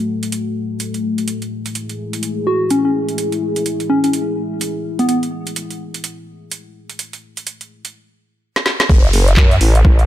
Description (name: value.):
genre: bass house.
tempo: 126 BPM.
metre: 4/4.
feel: swing 60% on 16ths.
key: F# minor.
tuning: A4 = 440 Hz.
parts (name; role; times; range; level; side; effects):
dark analog pad; sustained chords; 0.0-10.1 s; A3 to A4; -22 LUFS; left 2 dB; chorus, sidechain pumping.
garage drum kit; drums; 0.2-10.1 s; handclaps, hi-hat, snare drum; -21 LUFS; right 2 dB; overdrive, small room reverb.
soft struck synth lead; melody; 2.5-5.2 s; B3 to F#4; -18 LUFS; equal; chorus, digital delay.
vowel-sweep wobble bass; bass; 8.9-10.1 s; F#1 to F#2; -12 LUFS; equal; chorus, tube saturation, sidechain pumping.
electronic kick drum; drums; 8.9-10.0 s; none; -10 LUFS; equal; overdrive, small room reverb.
downlifter; sound effects; 8.9-10.1 s; none; -24 LUFS; right 1 dB; none.
room: light reverb.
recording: none.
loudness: -15 LUFS.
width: side -12 dB against mid.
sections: 0.0-8.9 A section; 8.9-10.1 B section.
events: drum fill 8.5-8.9; drop 8.9-10.1.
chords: 0.0 F#madd9.